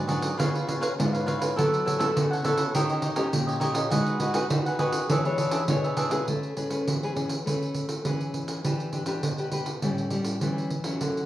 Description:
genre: samba and choro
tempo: 102 BPM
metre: 4/4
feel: straight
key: A major from 6.3 s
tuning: A4 = 439 Hz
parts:
  - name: cavaquinho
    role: accompaniment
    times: 0.0-6.3 s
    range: D4 to F#5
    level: -29 LUFS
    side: right 2 dB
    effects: cassette tape
  - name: nylon-string guitar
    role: accompaniment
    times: 0.0-11.3 s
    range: G#2 to C#5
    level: -28 LUFS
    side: left 2 dB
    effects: cassette tape
  - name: pandeiro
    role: percussion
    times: 0.1-11.3 s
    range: none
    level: -28 LUFS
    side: right 2 dB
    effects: none
room: moderate spring reverb, RT60 1.2 s, studio reverb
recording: home recording on cassette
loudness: -24 LUFS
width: side -13 dB against mid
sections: 0.0-6.3 A section; 6.3-11.3 B section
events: none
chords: 0.4 C#7; 1.6 F#m7; 2.7 D#7; 3.9 G#m7; 5.1 E6; 6.3 Amaj9; 8.6 Em7; 9.8 A7

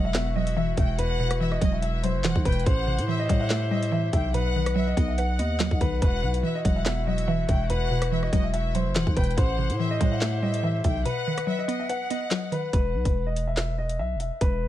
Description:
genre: hip hop, drill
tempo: 143 BPM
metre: 4/4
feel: half-time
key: E harmonic minor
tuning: A4 = 439 Hz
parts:
  - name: dark baby grand piano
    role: melody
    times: 0.0-14.7 s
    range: B4 to F#5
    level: -30 LUFS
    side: left 2 dB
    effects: low-pass filter, ping-pong delay
  - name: warm studio violin section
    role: second line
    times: 0.0-12.7 s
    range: D#5 to G5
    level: -36 LUFS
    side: left 2 dB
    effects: ping-pong delay
  - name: mallet-like synth pluck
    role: accompaniment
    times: 0.0-12.7 s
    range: E2 to B4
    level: -29 LUFS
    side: right 1 dB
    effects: chorus, low-pass filter
  - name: warm woodwind section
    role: sustained chords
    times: 0.0-12.7 s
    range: E3 to F#5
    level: -38 LUFS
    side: left 2 dB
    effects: none
  - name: growling 808-style bass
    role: bass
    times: 0.0-14.7 s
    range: E1 to A2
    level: -27 LUFS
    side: equal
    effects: none
  - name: drill drum kit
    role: drums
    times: 0.1-14.5 s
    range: handclaps, hi-hat, kick drum, rim click, snare drum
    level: -25 LUFS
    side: equal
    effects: none
room: studio reverb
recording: faint mains hum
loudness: -23 LUFS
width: side -13 dB against mid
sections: 0.0-12.7 A section; 12.7-14.7 B section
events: break 11.1-12.7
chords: 0.0 Esus2; 2.7 Am7; 4.3 B; 6.0 Esus2; 9.4 Am7; 11.1 B; 12.7 E5

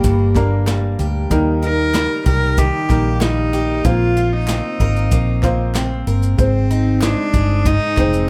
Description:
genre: acoustic pop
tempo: 94 BPM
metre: 4/4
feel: straight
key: Eb major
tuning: A4 = 440 Hz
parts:
  - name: warm cello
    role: melody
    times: 0.0-8.3 s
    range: Bb3 to Bb4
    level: -23 LUFS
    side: equal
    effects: none
  - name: picked steel-string acoustic guitar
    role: accompaniment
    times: 0.0-8.3 s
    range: G2 to Bb4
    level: -25 LUFS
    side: equal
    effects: none
  - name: warm baby grand piano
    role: accompaniment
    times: 0.0-8.3 s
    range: G3 to C5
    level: -27 LUFS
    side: equal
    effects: none
  - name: vintage muted fingered electric bass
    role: bass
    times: 0.0-8.3 s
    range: F1 to Eb2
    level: -20 LUFS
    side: equal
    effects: none
  - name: vintage brush drum kit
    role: drums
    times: 0.0-8.3 s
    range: kick drum, shaker, snare drum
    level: -23 LUFS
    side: equal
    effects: none
  - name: group handclap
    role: percussion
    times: 0.4-8.1 s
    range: none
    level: -34 LUFS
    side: equal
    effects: none
room: light reverb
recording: none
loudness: -17 LUFS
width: mono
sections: 0.0-8.3 A section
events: none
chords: 0.0 Gm; 1.3 Eb; 3.8 Bbsus2; 6.4 Ab

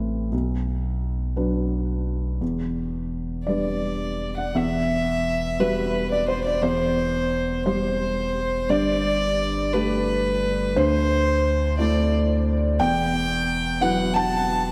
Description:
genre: neoclassical piano and strings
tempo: 58 BPM (dotted quarters)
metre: 6/8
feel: rubato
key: unclear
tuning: A4 = 442 Hz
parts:
  - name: felt-muted upright piano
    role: accompaniment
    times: 0.0-14.7 s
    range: B1 to A5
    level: -26 LUFS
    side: equal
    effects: none
  - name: pure sine sub bass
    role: bass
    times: 0.0-14.7 s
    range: E1 to D2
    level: -30 LUFS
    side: equal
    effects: none
  - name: rich violin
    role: melody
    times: 3.5-14.7 s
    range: B4 to A5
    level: -28 LUFS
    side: equal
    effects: tape echo
room: wet lush hall reverb, RT60 2.5 s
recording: dreamy mix soaked in reverb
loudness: -23 LUFS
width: mono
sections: 0.0-4.6 A section; 4.6-14.7 B section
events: none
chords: 0.3 Bm; 2.4 Em7; 4.6 Emadd9; 6.6 C/E; 8.7 Gadd9; 10.8 Dsus2; 12.8 Emadd9

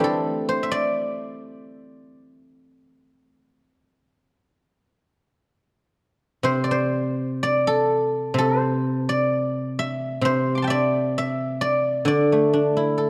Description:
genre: chinese traditional, Chinese solo plucked strings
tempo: 58-67 BPM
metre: 4/4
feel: rubato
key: D shang mode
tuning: A4 = 441 Hz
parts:
  - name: guzheng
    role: solo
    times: 0.0-13.1 s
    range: C3 to D6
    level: -23 LUFS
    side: equal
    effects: none
room: wet scoring stage reverb, RT60 2.0 s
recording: dark, warm production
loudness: -22 LUFS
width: mono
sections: 0.0-6.4 A section; 6.4-13.1 B section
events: none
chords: none

